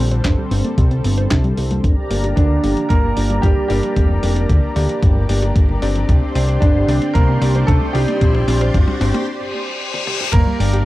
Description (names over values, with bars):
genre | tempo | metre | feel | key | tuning
italo disco | 113 BPM | 4/4 | straight | G minor | A4 = 441 Hz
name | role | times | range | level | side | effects
clear baby grand piano | melody | 0.0-10.8 s | D3 to Bb4 | -22 LUFS | right 3 dB | vintage 12-bit sampler grit, tape echo
warm analog pad | sustained chords | 0.0-10.8 s | D3 to D6 | -26 LUFS | equal | chorus
warbly dusty pluck | arpeggios | 0.0-10.8 s | D3 to C5 | -28 LUFS | right 1 dB | chorus, tape echo
fat analog bass | bass | 0.0-10.8 s | F1 to D2 | -18 LUFS | equal | none
dusty soul sampler-style drum kit | drums | 0.1-10.8 s | congas, crash cymbal, handclaps, hi-hat, snare drum, toms | -29 LUFS | left 1 dB | high-pass filter on hats, high-pass filter on snare, high-pass filter on perc, high-pass filter on toms, high-pass filter on cymbals, high-pass filter on room
electronic kick drum | drums | 0.2-10.4 s | none | -15 LUFS | equal | none
riser and reverse cymbal | sound effects | 4.7-10.3 s | none | -28 LUFS | left 2 dB | none
clear electric grand piano | stabs | 2.1-10.8 s | Bb3 to D5 | -24 LUFS | left 3 dB | low-pass filter
room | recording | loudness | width
light reverb | dry, close 1970s-style studio recording | -14 LUFS | side -17 dB against mid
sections
0.0-1.8 A section; 1.8-10.3 B section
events
drum fill 1.8-9.3, 9.9-10.3; filter sweep on electric grand piano 1.8-10.3; riser 4.7-9.3; break 9.3-10.3; reverse cymbal 9.3-10.3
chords
0.0 Csus2; 1.8 Gm; 6.1 Csus2; 10.3 Gm